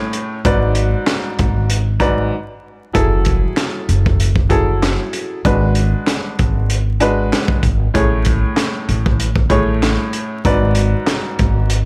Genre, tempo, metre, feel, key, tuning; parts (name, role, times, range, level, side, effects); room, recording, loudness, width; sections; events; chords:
hip hop, boom-bap hip-hop; 96 BPM; 4/4; swing 55% on 16ths; A4 = 439 Hz
warm upright piano; accompaniment; 0.0-11.8 s; G#2 to D5; -22 LUFS; equal; cassette tape, high-pass filter, low-pass filter
crunchy breakbeat drum kit; drums; 0.1-11.9 s; handclaps, hi-hat, kick drum, snare drum; -21 LUFS; equal
upright bass; bass; 0.5-11.9 s; F#1 to A1; -19 LUFS; equal
studio reverb; vinyl crackle; -16 LUFS; mono
0.0-11.9 A section
break 2.3-2.9
0.4 G#m7b5; 2.9 F#m9; 5.4 G#m7b5; 7.9 Amaj7; 10.4 G#m7b5